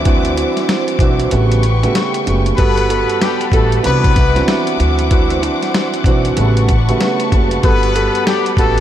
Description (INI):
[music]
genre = hip hop, boom-bap hip-hop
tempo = 95 BPM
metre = 4/4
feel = swing 62% on 16ths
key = G major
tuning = A4 = 440 Hz
[part]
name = dark concert grand piano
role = accompaniment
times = 0.0-8.8 s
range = C#3 to A4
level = -17 LUFS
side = right 3 dB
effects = cassette tape, high-pass filter, low-pass filter
[part]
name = warm studio string section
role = sustained chords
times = 0.0-8.8 s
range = A4 to D6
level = -21 LUFS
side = left 3 dB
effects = high-pass filter, low-pass filter
[part]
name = upright bass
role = bass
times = 0.0-8.8 s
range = F#1 to D2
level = -17 LUFS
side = equal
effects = none
[part]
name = dusty soul sampler-style drum kit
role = drums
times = 0.1-8.8 s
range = hi-hat, kick drum, snare drum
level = -17 LUFS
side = equal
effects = none
[part]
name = clear trumpet section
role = stabs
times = 2.6-8.8 s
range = G3 to B4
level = -22 LUFS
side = left 5 dB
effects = high-pass filter, low-pass filter, ping-pong delay
[sound]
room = moderate huge ambient reverb, RT60 8.2 s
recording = dreamy mix soaked in reverb, vinyl crackle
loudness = -12 LUFS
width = side -11 dB against mid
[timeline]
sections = 0.0-8.8 A section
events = kick muted 1.3-2.6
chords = 0.0 D9; 1.3 A13; 2.6 Gmaj9; 3.8 Cmaj9#11; 4.8 D9; 6.4 A13; 7.6 Gmaj9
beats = | 0.06 0.69 1.32 1.95 | 2.58 3.21 3.84 4.48 | 5.11 5.74 6.37 7.00 | 7.63 8.27